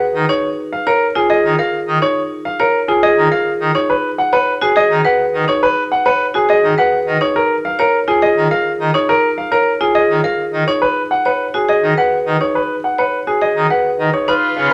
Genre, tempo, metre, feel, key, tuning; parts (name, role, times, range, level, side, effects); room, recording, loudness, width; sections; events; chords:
classical, minimalist pattern music; 104 BPM; 3/4; straight; A4 = 440 Hz
clear grand piano; melody; 0.0-14.7 s; G#4 to F#5; -17 LUFS; equal
marimba with hard mallets; arpeggios; 0.0-14.7 s; D#4 to C#5; -20 LUFS; equal
pipe organ, full organ; accompaniment; 0.1-14.7 s; C#3 to D#3; -21 LUFS; equal
mellow oboe; second line; 14.3-14.7 s; E#4; -18 LUFS; equal
clear studio string section; sustained chords; 14.3-14.7 s; E#4 to B4; -24 LUFS; equal
moderate large studio reverb, RT60 1.0 s; -15 LUFS; mono
0.0-14.3 A section
0.4 N.C.; 3.9 C#7sus4 (rootless); 7.4 A#5; 10.8 C#7sus4 (rootless)